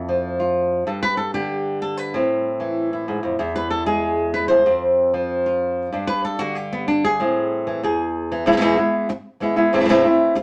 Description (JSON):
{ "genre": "flamenco", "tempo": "190 BPM", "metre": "4/4", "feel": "straight", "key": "E phrygian dominant", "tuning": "A4 = 445 Hz", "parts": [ { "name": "flamenco guitar", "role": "solo", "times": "0.0-10.4 s", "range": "E2 to C5", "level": "-20 LUFS", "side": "equal", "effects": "none" } ], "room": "moderate studio reverb, RT60 0.6 s", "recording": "none", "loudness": "-21 LUFS", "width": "mono", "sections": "0.0-8.5 A section; 8.5-10.4 B section", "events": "nylon-string guitar solo 0.0-8.5", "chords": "0.0 F; 0.9 Gsus2; 2.1 Am; 3.4 E; 4.7 F5; 5.9 G5; 7.2 Am; 7.8 E; 9.7 Am/E" }